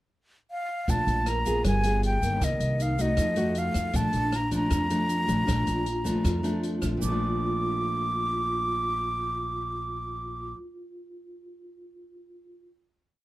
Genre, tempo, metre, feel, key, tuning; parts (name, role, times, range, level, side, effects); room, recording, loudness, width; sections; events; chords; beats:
bossa nova; 156 BPM; 4/4; straight; Bb major; A4 = 440 Hz
breathy concert flute; melody; 0.5-10.5 s; Eb5 to D6; -29 LUFS; equal
nylon-string guitar; accompaniment; 0.9-10.7 s; F2 to Ab4; -30 LUFS; equal
upright bass; bass; 0.9-10.5 s; G1 to F2; -30 LUFS; equal
open jazz drum kit; drums; 0.9-6.9 s; hi-hat, kick drum, rim click; -33 LUFS; equal
tube shaker; percussion; 0.9-7.1 s; -42 LUFS; right 6 dB
vibraphone with medium mallets; accompaniment; 1.3-12.6 s; D4 to Bb4; -35 LUFS; right 1 dB
little or no reverb; lossy compression artefacts; -24 LUFS; side -16 dB against mid
0.0-0.9 pickup bar; 0.9-7.0 A section; 7.0-10.1 final chord
0.0 N.C.; 0.9 Bbmaj7; 1.6 G7b9; 2.4 Cm7; 3.2 F7b9; 3.9 Bbmaj7
0.12 0.50 | 0.88 1.26 1.65 2.03 | 2.41 2.80 3.18 3.56 | 3.94 4.33 4.71 5.09 | 5.48 5.86 6.25 6.63 | 7.02 7.40 7.79 8.17 | 8.56 8.95 9.33 9.72